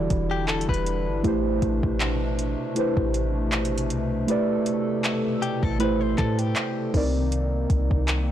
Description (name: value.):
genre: contemporary R&B.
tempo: 79 BPM.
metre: 4/4.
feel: swing 54% on 16ths.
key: unclear.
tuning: A4 = 440 Hz.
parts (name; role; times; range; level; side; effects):
muted felt-like synth keys; accompaniment; 0.0-8.3 s; C3 to D5; -26 LUFS; right 2 dB; chorus.
hollow soft pad; sustained chords; 0.0-8.3 s; B2 to A4; -31 LUFS; left 2 dB; chorus, sidechain pumping.
clean 808-style bass; bass; 0.0-8.3 s; E1 to A2; -26 LUFS; equal; none.
smooth R&B drum kit; drums; 0.1-8.3 s; handclaps, hi-hat, kick drum; -28 LUFS; equal; overdrive.
direct-recorded clean electric guitar; arpeggios; 0.3-6.9 s; G4 to C5; -30 LUFS; left 6 dB; tape echo.
room: digital ambience.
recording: blown-out, overdriven recording, overdrive.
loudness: -22 LUFS.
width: side -11 dB against mid.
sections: 0.0-8.3 A section.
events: none.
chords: 0.0 Em9; 1.2 Am9; 6.9 Cm9.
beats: 0.48 | 1.24 2.00 2.76 3.52 | 4.28 5.04 5.80 6.56 | 7.32 8.08.